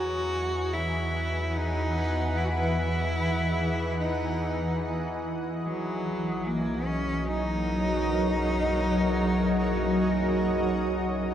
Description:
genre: ambient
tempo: free time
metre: none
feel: none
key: E lydian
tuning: A4 = 441 Hz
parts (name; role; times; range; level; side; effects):
- rich cello; melody; 0.0-11.3 s; F#3 to F#4; -31 LUFS; equal; tape echo
- granular cloud pad; sustained chords; 0.0-11.3 s; E3 to A#5; -28 LUFS; equal; built-in reverb
- round analog bass; bass; 0.0-11.3 s; B1 to E2; -32 LUFS; equal; none
- overtone-sweeping drone; drone; 0.0-11.3 s; E3 to G#4; -38 LUFS; equal; chorus, built-in reverb, phaser
room: wet cathedral reverb, RT60 6.3 s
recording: none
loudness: -25 LUFS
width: side -10 dB against mid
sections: 0.0-11.3 A section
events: none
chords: 0.0 Emaj7; 5.7 Bmaj7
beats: free time

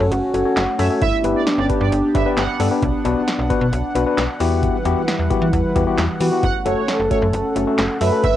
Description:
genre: synth-pop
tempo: 133 BPM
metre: 4/4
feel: straight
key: unclear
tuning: A4 = 440 Hz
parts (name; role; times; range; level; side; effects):
- mellow horn-like synth lead; melody; 0.0-2.6, 6.2-8.4 s; C#4 to B4; -22 LUFS; right 1 dB; chorus, cassette tape, plate reverb
- tine electric piano; accompaniment; 0.0-8.2 s; A3 to C#5; -22 LUFS; left 5 dB; plate reverb
- warm analog pad; sustained chords; 0.0-8.4 s; E3 to F#5; -24 LUFS; equal; chorus
- slap-like FM bass; bass; 0.0-8.3 s; F#1 to E3; -22 LUFS; equal; none
- electro analog drum machine; drums; 0.1-8.3 s; handclaps, hi-hat, kick drum, snare drum; -24 LUFS; equal; cassette tape
- analog synth brass; second line; 0.8-2.7, 6.4-8.4 s; C#5 to F#5; -25 LUFS; right 8 dB; chorus, analog delay, plate reverb
room: light reverb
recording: home recording on cassette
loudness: -16 LUFS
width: side -12 dB against mid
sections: 0.0-8.4 A section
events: none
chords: 0.0 F#m; 1.0 G; 2.8 Bm; 4.4 Emadd9; 6.4 F#m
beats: 0.12 0.57 | 1.02 1.47 1.92 2.37 | 2.82 3.27 3.73 4.18 | 4.63 5.08 5.53 5.98 | 6.43 6.88 7.33 7.79 | 8.24

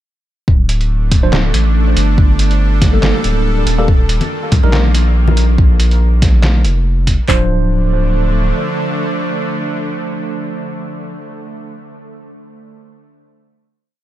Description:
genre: deep dubstep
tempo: 141 BPM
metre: 4/4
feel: swing 55% on 16ths, half-time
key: D phrygian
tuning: A4 = 441 Hz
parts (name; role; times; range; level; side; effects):
- bowed-like drone; sustained chords; 0.8-11.2 s; D3 to A4; -22 LUFS; equal; built-in reverb
- saturated sub bass; bass; 0.5-8.5 s; D1 to Bb1; -13 LUFS; equal; none
- deep house drum kit; drums; 0.5-7.4 s; handclaps, kick drum; -12 LUFS; equal; none
- trip hop sampler-style drum kit; drums; 0.7-7.2 s; handclaps, hi-hat, snare drum; -19 LUFS; equal; overdrive
- tine electric piano; stabs; 1.2-11.2 s; F3 to C5; -21 LUFS; right 2 dB; medium stereo tremolo, dub echo
- congas and bongos; percussion; 4.2-5.4 s; none; -21 LUFS; left 2 dB; none
room: digital ambience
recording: dark, warm production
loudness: -11 LUFS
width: side -13 dB against mid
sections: 0.5-7.3 drop; 7.3-10.7 final chord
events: drop 0.5-7.3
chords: 0.5 D5; 2.2 Gmadd9; 3.9 Eb5; 5.6 Bb5; 7.3 Dm7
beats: | 0.48 0.90 1.33 1.75 | 2.18 2.60 3.03 3.46 | 3.88 4.31 4.73 5.16 | 5.58 6.01 6.43 6.86 | 7.29 7.71 8.14 8.56 | 8.99 9.41 9.84 10.27

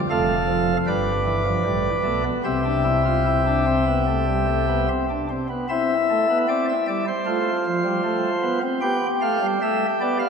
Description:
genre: classical, baroque-style 4-part fugue for pipe organ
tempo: 76 BPM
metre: 4/4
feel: straight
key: C major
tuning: A4 = 440 Hz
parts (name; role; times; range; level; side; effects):
- pipe organ, sparkling flutes; solo; 0.0-10.3 s; F1 to G5; -19 LUFS; equal; none
room: wet church reverb, RT60 2.9 s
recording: minimal, uncompressed stereo recording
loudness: -19 LUFS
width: side -6 dB against mid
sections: 0.0-5.7 A section; 5.7-10.3 B section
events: none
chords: 0.0 Dm (rootless); 0.9 G; 2.5 C; 7.3 F; 8.8 G7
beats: 0.10 0.87 1.65 | 2.46 3.27 4.08 4.88 | 5.69 6.49 7.27 8.05 | 8.83 9.61

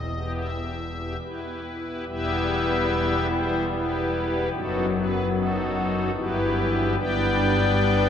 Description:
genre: classical, chorale-style piece for pipe organ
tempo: 73 BPM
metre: 3/4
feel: straight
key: E minor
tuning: A4 = 440 Hz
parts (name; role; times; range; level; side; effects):
- pipe organ, strings celeste; solo; 0.0-8.1 s; E1 to G5; -22 LUFS; left 1 dB; none
room: wet cathedral reverb, RT60 4.8 s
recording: small room ambience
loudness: -22 LUFS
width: side -8 dB against mid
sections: 0.0-2.1 A section; 2.1-8.1 B section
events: none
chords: 0.0 Em; 4.5 B7/F#; 6.1 Em/G; 7.0 G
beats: 0.34 1.19 | 2.07 2.89 3.71 | 4.52 5.33 6.14 | 6.97 7.78

